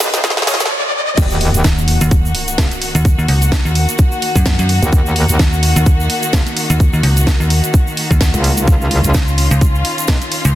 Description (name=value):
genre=bass house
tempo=128 BPM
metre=4/4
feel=swing 57% on 16ths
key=Eb minor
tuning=A4 = 439 Hz
part: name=warm studio string section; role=sustained chords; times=0.0-10.6 s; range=Eb3 to Gb4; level=-21 LUFS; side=left 1 dB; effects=sidechain pumping
part: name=metallic wobble bass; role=bass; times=0.0-10.2 s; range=Cb2 to F2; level=-16 LUFS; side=equal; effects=chorus, sidechain pumping, high-pass filter
part: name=garage drum kit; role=drums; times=0.0-10.5 s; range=crash cymbal, hi-hat, snare drum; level=-19 LUFS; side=equal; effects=soft clipping on snare, studio reverb
part: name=egg shaker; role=percussion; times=0.0-10.5 s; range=none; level=-25 LUFS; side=right 2 dB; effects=none
part: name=riser and impact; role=sound effects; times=0.0-3.0 s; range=none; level=-21 LUFS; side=equal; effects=none
part: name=orchestra-hit-like synth stab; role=stabs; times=0.2-0.5 s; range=Db4 to Eb5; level=-23 LUFS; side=equal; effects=built-in reverb, cassette tape, sidechain pumping, digital delay
part: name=electronic kick drum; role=drums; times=0.2-10.2 s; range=none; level=-13 LUFS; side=equal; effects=high-pass filter on kick, studio reverb
part: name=metallic FM bass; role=bass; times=1.6-10.6 s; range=Db2 to Gb2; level=-14 LUFS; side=equal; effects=tube saturation, sidechain pumping
room=light reverb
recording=dense, heavily limited modern master, high-pass filter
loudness=-11 LUFS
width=side -14 dB against mid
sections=0.0-1.2 A section; 1.2-10.6 B section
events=build-up 0.0-1.2; drum fill 0.0-0.7; riser 0.0-1.2; break 0.7-1.2; drop 1.2-10.6; impact 1.2-3.1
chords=0.0 Dbadd9; 1.2 Ebm; 8.7 Dbadd9